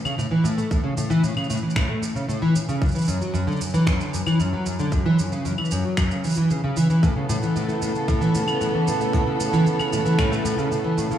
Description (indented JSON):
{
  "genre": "folktronica",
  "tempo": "114 BPM",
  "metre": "4/4",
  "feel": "straight",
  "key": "A major",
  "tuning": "A4 = 439 Hz",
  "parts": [
    { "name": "nylon-string guitar", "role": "arpeggios", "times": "0.0-11.2 s", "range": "F#2 to A3", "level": "-21 LUFS", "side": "equal", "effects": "analog chorus, analog delay" },
    { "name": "electronic claves, shaker and finger snaps", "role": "drums", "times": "0.1-11.2 s", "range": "none", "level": "-32 LUFS", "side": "right 1 dB", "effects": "none" },
    { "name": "electronic kick drum", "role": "drums", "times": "0.7-10.3 s", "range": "none", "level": "-23 LUFS", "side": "equal", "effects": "none" },
    { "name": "warm string quartet", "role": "sustained chords", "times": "7.0-11.2 s", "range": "C#3 to A4", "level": "-25 LUFS", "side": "right 2 dB", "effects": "none" },
    { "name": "vibraphone with soft mallets", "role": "second line", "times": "7.7-11.2 s", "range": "E4 to A5", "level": "-28 LUFS", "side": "equal", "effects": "analog delay" }
  ],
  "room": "wet plate reverb, RT60 2.7 s",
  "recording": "dreamy mix soaked in reverb, studio reverb",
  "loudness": "-20 LUFS",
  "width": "side -10 dB against mid",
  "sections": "0.0-11.2 A section",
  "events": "none",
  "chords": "0.0 A; 2.8 Dadd9; 4.9 F#5; 7.0 Aadd9"
}